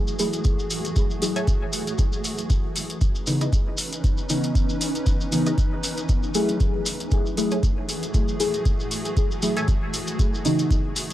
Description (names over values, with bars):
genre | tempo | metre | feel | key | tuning
dub techno | 117 BPM | 4/4 | swing 56% on 16ths | unclear | A4 = 439 Hz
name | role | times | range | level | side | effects
granular cloud pad | sustained chords | 0.0-11.1 s | E3 to B4 | -31 LUFS | equal | built-in reverb, sidechain pumping
maracas | percussion | 0.1-11.1 s | none | -32 LUFS | left 1 dB | none
deep mellow chord stab | stabs | 0.2-11.1 s | C#3 to G#4 | -26 LUFS | left 1 dB | chorus, phaser, vintage 12-bit sampler grit, sidechain pumping, dub echo
electronic hi-hat | drums | 0.2-11.1 s | none | -33 LUFS | equal | none
electronic kick drum | drums | 0.4-10.8 s | none | -22 LUFS | equal | none
filtered dub chord stab | riff | 1.4-9.8 s | E4 to G#5 | -35 LUFS | right 2 dB | phaser, sidechain pumping, dub echo
room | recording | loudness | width
little or no reverb | dry, gritty hardware recording, cassette tape | -21 LUFS | side -14 dB against mid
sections
0.0-11.1 A section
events
none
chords
0.0 F#m9; 2.5 C#m9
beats
| 0.45 0.96 1.48 1.99 | 2.50 3.01 3.53 4.04 | 4.55 5.07 5.58 6.09 | 6.60 7.12 7.63 8.14 | 8.65 9.17 9.68 10.19 | 10.71